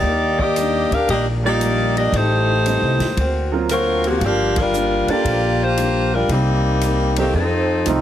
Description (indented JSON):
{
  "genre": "jazz, big band swing",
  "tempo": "115 BPM",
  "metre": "4/4",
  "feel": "swing 68% on 8ths",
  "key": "G minor",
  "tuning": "A4 = 440 Hz",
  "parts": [
    { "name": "warm saxophone section", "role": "melody", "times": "0.0-8.0 s", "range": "C3 to F5", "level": "-18 LUFS", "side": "left 1 dB", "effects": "none" },
    { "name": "picked steel-string acoustic guitar", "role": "accompaniment", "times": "0.0-8.0 s", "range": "F2 to F#4", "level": "-28 LUFS", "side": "left 3 dB", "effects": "none" },
    { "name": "upright bass", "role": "bass", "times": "0.0-8.0 s", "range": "G1 to F2", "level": "-22 LUFS", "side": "equal", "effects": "none" },
    { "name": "swinging big-band drum kit", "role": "drums", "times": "0.4-8.0 s", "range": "hi-hat, kick drum, ride cymbal, snare drum", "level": "-31 LUFS", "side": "left 1 dB", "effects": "none" },
    { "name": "clear upright piano", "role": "accompaniment", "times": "1.4-8.0 s", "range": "F#3 to D5", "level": "-25 LUFS", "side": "right 7 dB", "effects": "none" },
    { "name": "clear trombone section", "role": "second line", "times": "7.9-8.0 s", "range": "F3 to Eb4", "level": "-18 LUFS", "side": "right 5 dB", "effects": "none" }
  ],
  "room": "light reverb",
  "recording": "heavily compressed radio sound, multiband compression",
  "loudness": "-16 LUFS",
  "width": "side -11 dB against mid",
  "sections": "0.0-8.0 A section",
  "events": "band accent 4.5",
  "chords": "0.0 Ebmaj7; 2.1 Am7b5; 3.2 D7alt; 4.2 Gm7; 6.3 Cm7; 7.3 F7"
}